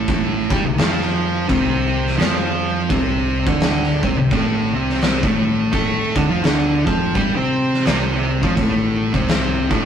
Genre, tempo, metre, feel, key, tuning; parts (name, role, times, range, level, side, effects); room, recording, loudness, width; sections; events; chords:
stoner and doom metal; 85 BPM; 4/4; swing 60% on 8ths; A4 = 441 Hz
thick fuzz guitar; riff; 0.0-9.8 s; A2 to C5; -24 LUFS; left 7 dB; distortion
thick fuzz guitar; riff; 0.0-9.8 s; A2 to C5; -20 LUFS; right 3 dB; distortion
overdriven picked electric bass; bass; 0.0-9.8 s; A1 to C3; -25 LUFS; equal
oversized low-tuned drum kit; drums; 0.1-9.8 s; crash cymbal, kick drum, snare drum; -20 LUFS; equal
moderate studio reverb, RT60 0.7 s; rough rehearsal-room recording, tube saturation; -16 LUFS; side -8 dB against mid
0.0-9.9 A section
0.0 C5; 8.6 A5